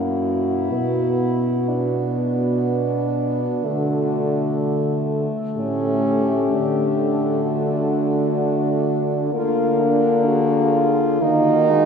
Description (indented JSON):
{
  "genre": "classical, lyrical piece for horn quartet",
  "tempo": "63 BPM",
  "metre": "3/4",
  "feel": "rubato",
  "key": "unclear",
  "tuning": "A4 = 438 Hz",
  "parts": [
    { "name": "mellow French horn", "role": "melody", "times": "0.0-11.9 s", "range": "F#4 to Bb4", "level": "-26 LUFS", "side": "left 3 dB", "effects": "none" },
    { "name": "warm French horn", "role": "second line", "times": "0.0-11.9 s", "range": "C#4 to Gb4", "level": "-23 LUFS", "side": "right 4 dB", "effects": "none" },
    { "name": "mellow French horn", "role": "accompaniment", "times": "0.0-11.9 s", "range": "Ab3 to B3", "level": "-24 LUFS", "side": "left 2 dB", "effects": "none" },
    { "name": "mellow French horn", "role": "bass", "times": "0.0-11.9 s", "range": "F#2 to Eb3", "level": "-23 LUFS", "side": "equal", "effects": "none" }
  ],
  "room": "wet cathedral reverb, RT60 5.4 s",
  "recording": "heard from further back in the room",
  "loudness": "-18 LUFS",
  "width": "side -6 dB against mid",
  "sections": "0.0-11.9 A section",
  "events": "none",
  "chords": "0.0 F#7; 0.7 Bm; 3.6 D; 5.6 A7; 6.5 D; 9.3 Bb7/D; 11.2 Ebm"
}